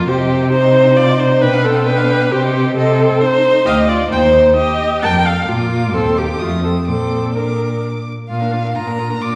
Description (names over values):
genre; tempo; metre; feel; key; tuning
quick classical-period movement for string quartet; 132 BPM; 3/4; straight; Bb major; A4 = 441 Hz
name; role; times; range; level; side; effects
warm violin; melody; 0.0-9.4 s; A3 to D6; -24 LUFS; equal; none
rich violin; second line; 0.0-9.4 s; F4 to Eb6; -27 LUFS; equal; none
rich viola; accompaniment; 0.0-9.4 s; Bb3 to G5; -17 LUFS; equal; none
rich cello; bass; 0.0-9.4 s; D2 to C3; -20 LUFS; equal; none
room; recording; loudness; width
wet recital hall reverb, RT60 1.4 s; heard from further back in the room, vinyl crackle; -15 LUFS; mono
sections
0.0-8.3 A section; 8.3-9.4 A section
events
none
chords
0.1 Cm; 1.4 G7/B; 2.3 Cm; 3.7 Dmadd11; 4.1 Cm/Eb; 5.0 F; 5.5 Bb; 5.9 Cm/Eb; 6.4 F7; 6.9 Bb